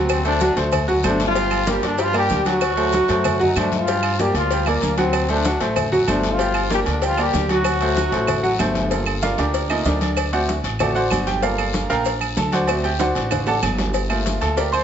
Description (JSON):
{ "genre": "latin, salsa", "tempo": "191 BPM", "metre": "4/4", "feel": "straight", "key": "G minor", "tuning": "A4 = 440 Hz", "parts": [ { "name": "bright trombone section", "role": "melody", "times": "0.0-8.6 s", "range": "Bb2 to G4", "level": "-22 LUFS", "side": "left 1 dB", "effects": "none" }, { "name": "bright upright piano", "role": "accompaniment", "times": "0.0-14.8 s", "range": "F#3 to C6", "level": "-22 LUFS", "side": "right 1 dB", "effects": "none" }, { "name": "upright bass", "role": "bass", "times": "0.0-14.8 s", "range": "G1 to G2", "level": "-25 LUFS", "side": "equal", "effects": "none" }, { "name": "agogo bells and timbales", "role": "percussion", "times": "0.1-14.8 s", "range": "none", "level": "-28 LUFS", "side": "right 7 dB", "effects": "none" }, { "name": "claves", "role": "percussion", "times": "0.1-14.8 s", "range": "none", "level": "-33 LUFS", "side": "right 4 dB", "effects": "none" }, { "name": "congas", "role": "percussion", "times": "0.1-14.8 s", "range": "none", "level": "-29 LUFS", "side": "left 1 dB", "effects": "none" }, { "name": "cowbell", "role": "percussion", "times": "0.1-14.7 s", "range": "none", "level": "-29 LUFS", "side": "left 8 dB", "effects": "none" }, { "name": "guiro", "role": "percussion", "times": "0.1-14.8 s", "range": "none", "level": "-34 LUFS", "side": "left 8 dB", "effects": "none" }, { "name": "maracas", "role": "percussion", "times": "0.1-14.8 s", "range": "none", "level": "-38 LUFS", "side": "right 8 dB", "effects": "none" } ], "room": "wet large studio reverb, RT60 1.5 s", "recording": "nothing above 7.8 kHz", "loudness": "-17 LUFS", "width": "side -9 dB against mid", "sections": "0.0-8.9 A section; 8.9-14.8 B section", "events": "upright piano solo 8.9-14.8; drum fill 13.0-13.9", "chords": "0.1 D7; 1.4 Gm7; 2.6 D7; 3.9 Gm7; 5.1 D7; 6.4 Gm7; 7.7 D7; 8.9 Gm7; 10.2 D7; 11.4 Gm7; 12.7 D7; 13.9 Gm7", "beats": "| 0.10 0.41 0.73 1.04 | 1.36 1.67 1.99 2.30 | 2.62 2.93 3.25 3.56 | 3.88 4.19 4.50 4.82 | 5.13 5.45 5.76 6.08 | 6.39 6.71 7.02 7.34 | 7.65 7.97 8.28 8.60 | 8.91 9.22 9.54 9.85 | 10.17 10.48 10.80 11.11 | 11.43 11.74 12.06 12.37 | 12.69 13.00 13.32 13.63 | 13.95 14.26 14.57" }